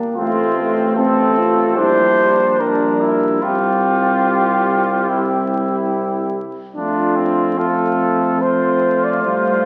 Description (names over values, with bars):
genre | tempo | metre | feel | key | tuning
classical, brass quintet | 73 BPM | 4/4 | straight | F major | A4 = 440 Hz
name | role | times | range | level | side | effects
mellow French horn | accompaniment | 0.0-9.7 s | G3 to F4 | -24 LUFS | equal | none
dark cornet | melody | 0.2-9.7 s | F4 to D5 | -20 LUFS | equal | none
warm trumpet | second line | 0.2-9.7 s | C4 to F4 | -24 LUFS | equal | none
warm trombone | accompaniment | 0.2-9.7 s | G3 to A3 | -26 LUFS | equal | none
warm tuba | bass | 0.2-9.7 s | A1 to A2 | -28 LUFS | equal | none
room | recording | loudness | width
wet scoring stage reverb, RT60 1.5 s | very old 78 rpm record, vinyl crackle | -17 LUFS | mono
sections
0.0-9.7 A section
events
none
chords
0.2 F/A; 1.8 Gm/Bb; 3.4 Csus4; 6.8 F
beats
| 0.17 0.97 1.78 2.60 | 3.43 4.27 5.10 5.93 | 6.76 7.58 8.41 9.23